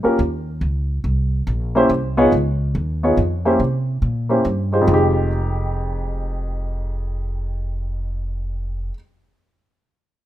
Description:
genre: jazz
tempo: 141 BPM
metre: 3/4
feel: swing 66% on 8ths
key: F minor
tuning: A4 = 440 Hz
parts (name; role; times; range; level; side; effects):
- warm baby grand piano; melody; 0.0-9.0 s; F2 to Db5; -18 LUFS; equal; none
- upright bass; bass; 0.0-8.9 s; F1 to C3; -21 LUFS; equal; none
room: light reverb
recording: minimal, uncompressed stereo recording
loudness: -18 LUFS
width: side -13 dB against mid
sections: 0.0-4.9 A section; 4.9-7.4 B section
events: none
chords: 0.0 Gdim (rootless); 1.0 C7(no3); 2.3 Db; 3.6 C7(no3); 4.9 Fm9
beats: 0.19 0.62 | 1.04 1.47 1.89 | 2.32 2.75 3.17 | 3.60 4.02 4.45 | 4.88 5.30 5.73 | 6.15 6.58 7.01

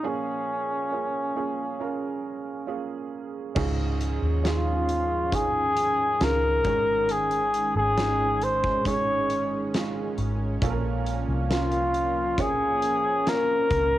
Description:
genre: pop ballad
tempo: 68 BPM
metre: 4/4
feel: straight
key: Db major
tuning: A4 = 440 Hz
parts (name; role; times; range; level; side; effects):
- warm flugelhorn; melody; 0.0-14.0 s; Db4 to Db5; -24 LUFS; left 1 dB; none
- felt-muted upright piano; accompaniment; 0.0-14.0 s; Ab2 to Db5; -31 LUFS; right 7 dB; cassette tape
- lush unison pad; sustained chords; 4.1-14.0 s; Eb3 to Db4; -35 LUFS; equal; chorus, cassette tape
- vintage muted fingered electric bass; bass; 3.6-14.0 s; Ab1 to Eb2; -29 LUFS; left 1 dB; none
- huge arena drum kit; drums; 3.6-13.9 s; crash cymbal, hi-hat, kick drum, snare drum; -31 LUFS; left 1 dB; cassette tape
room: light reverb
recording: home recording on cassette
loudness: -23 LUFS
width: side -14 dB against mid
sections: 0.0-3.6 A section; 3.6-14.0 B section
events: none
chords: 0.0 Bbm7; 3.6 Dbadd9; 6.6 Absus4; 10.6 Bbm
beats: | 0.03 0.91 1.79 2.67 | 3.56 4.44 5.32 6.20 | 7.09 7.97 8.85 9.73 | 10.62 11.50 12.38 13.26

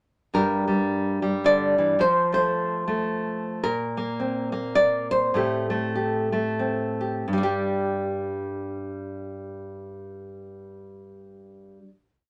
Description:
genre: folk, solo fingerstyle acoustic guitar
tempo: 83-110 BPM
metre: 3/4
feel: swing 61% on 8ths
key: G minor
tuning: A4 = 440 Hz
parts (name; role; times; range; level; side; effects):
- nylon-string guitar; solo; 0.3-11.9 s; G2 to D5; -25 LUFS; equal; none
room: moderate studio reverb, RT60 0.5 s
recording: none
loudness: -25 LUFS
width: mono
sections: 0.3-7.3 A section; 7.3-11.6 final chord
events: slowing down 3.6-7.3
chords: 0.3 Gm; 2.0 F; 3.6 Bbsus2; 5.3 Am7; 7.3 G5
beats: | 0.34 0.89 1.44 | 1.99 2.54 3.09 | 3.63 4.19 4.75 | 5.34 5.95 6.59 | 7.29 8.01 8.73 | 9.45 10.16 10.88

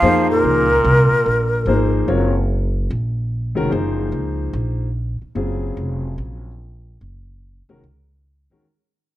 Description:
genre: modal jazz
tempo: 146 BPM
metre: 4/4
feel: swing 65% on 8ths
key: unclear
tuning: A4 = 439 Hz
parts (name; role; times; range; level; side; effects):
- breathy mellow silver concert flute; melody; 0.0-1.9 s; Bb4 to F5; -16 LUFS; equal; none
- trombone with metal mute; second line; 0.0-1.9 s; Bb2 to F3; -23 LUFS; right 4 dB; none
- warm baby grand piano; accompaniment; 0.0-8.6 s; Db3 to Db5; -21 LUFS; left 2 dB; none
- upright bass; bass; 0.0-8.6 s; F1 to F2; -21 LUFS; equal; none
room: moderate large studio reverb, RT60 1.3 s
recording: none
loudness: -16 LUFS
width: side -14 dB against mid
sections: 0.0-2.1 A section; 2.1-8.6 B section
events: fade-out 2.1-8.6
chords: 0.0 Gbmaj9 (rootless); 2.1 Gbmaj9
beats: 0.02 | 0.43 0.84 1.26 1.67 | 2.08 2.49 2.90 3.31 | 3.72 4.13 4.54 4.95 | 5.36 5.77 6.18 6.59 | 7.00 7.41 7.82 8.23

